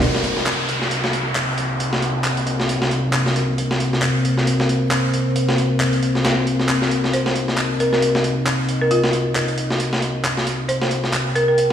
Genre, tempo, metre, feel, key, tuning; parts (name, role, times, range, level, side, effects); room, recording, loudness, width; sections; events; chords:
breakbeat, breaks; 135 BPM; 4/4; swing 57% on 16ths; C minor; A4 = 440 Hz
dark analog pad; sustained chords; 0.0-11.7 s; C3 to G5; -20 LUFS; left 1 dB; wide subtle chorus
breakbeat sampler-style drum kit; drums; 0.0-11.7 s; hi-hat, snare drum; -23 LUFS; equal; high-pass filter on hats, small room ambience, high-pass filter on kick, high-pass filter on snare
downlifter; sound effects; 0.0-3.6 s; -25 LUFS; equal
electronic handclaps; drums; 0.5-11.2 s; -26 LUFS; equal; small room ambience
folk marimba with medium hard mallets; melody; 7.1-11.5 s; F4 to C5; -21 LUFS; equal; telephone sound, digital delay
moderate lush hall reverb, RT60 2.2 s; played on a big sound system in a bare room, large studio reverb, vinyl crackle; -17 LUFS; side -9 dB against mid
0.0-11.7 A section
filter sweep on analog synth pad 0.0-11.7
0.0 Cm7